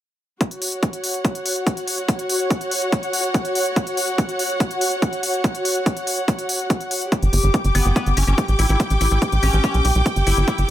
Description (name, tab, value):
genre	psychedelic trance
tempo	143 BPM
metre	4/4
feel	straight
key	unclear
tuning	A4 = 439 Hz
part	electronic hi-hat	drums	0.4-10.7 s	none	-26 LUFS	left 1 dB	none
part	electronic kick drum	drums	0.4-10.6 s	none	-20 LUFS	equal	high-pass filter on kick, high-pass filter on room
part	dark studio string section	texture	0.4-10.7 s	F#4 to D6	-23 LUFS	equal	sidechain pumping
part	tight sequencer bass	bass	7.2-10.6 s	G1 to B1	-17 LUFS	equal	none
part	metallic wobble bass	second line	7.7-10.6 s	B3 to E4	-27 LUFS	left 4 dB	chorus, sidechain pumping, high-pass filter, ping-pong delay
room	light reverb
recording	none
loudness	-18 LUFS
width	side -12 dB against mid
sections	0.4-10.7 A section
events	none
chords	0.4 F#5; 7.1 G5